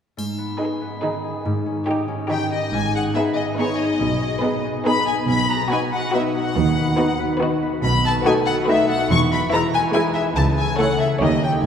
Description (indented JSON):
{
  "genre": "cinematic, playful, whimsical film cue",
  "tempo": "141 BPM",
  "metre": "3/4",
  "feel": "straight",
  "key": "G# minor",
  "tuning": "A4 = 440 Hz",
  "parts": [
    { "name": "concert harp", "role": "arpeggios", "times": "0.2-11.7 s", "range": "G#2 to B4", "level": "-24 LUFS", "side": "left 3 dB", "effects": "none" },
    { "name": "dark studio cello section", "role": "bass", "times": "0.2-11.7 s", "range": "C#2 to D#3", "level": "-28 LUFS", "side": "right 3 dB", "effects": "none" },
    { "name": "triangle", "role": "percussion", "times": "0.2-1.0 s", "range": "none", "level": "-38 LUFS", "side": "left 3 dB", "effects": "none" },
    { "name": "rich chamber violin section", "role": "melody", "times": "0.6-11.7 s", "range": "B4 to C#6", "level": "-23 LUFS", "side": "left 3 dB", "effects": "none" },
    { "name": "rich chamber violin section", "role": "second line", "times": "0.6-11.5 s", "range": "E4 to C#5", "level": "-26 LUFS", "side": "left 1 dB", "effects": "none" },
    { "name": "warm studio viola section", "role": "accompaniment", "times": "0.6-11.5 s", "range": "G#3 to E4", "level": "-25 LUFS", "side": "right 2 dB", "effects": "none" },
    { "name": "rich chamber double bass section", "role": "bass", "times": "2.7-11.7 s", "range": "E1 to D#2", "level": "-27 LUFS", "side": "right 4 dB", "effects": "none" }
  ],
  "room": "wet cathedral reverb, RT60 4.3 s",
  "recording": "recorded in a church or concert hall",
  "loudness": "-18 LUFS",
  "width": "side -8 dB against mid",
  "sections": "0.2-2.7 A section; 2.7-11.7 B section",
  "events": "none",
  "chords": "0.2 G#m; 1.4 D#7/G#; 2.7 G#m; 4.0 G#m/B; 5.3 B; 6.6 B/D#; 7.8 B7; 9.1 E; 10.4 A/C#; 11.2 D#7",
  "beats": "| 0.18 0.60 1.03 | 1.45 1.87 2.30 | 2.73 3.15 3.58 | 4.00 4.43 4.86 | 5.29 5.71 6.14 | 6.56 6.99 7.41 | 7.83 8.25 8.67 | 9.10 9.52 9.94 | 10.36 10.79 11.21 | 11.64"
}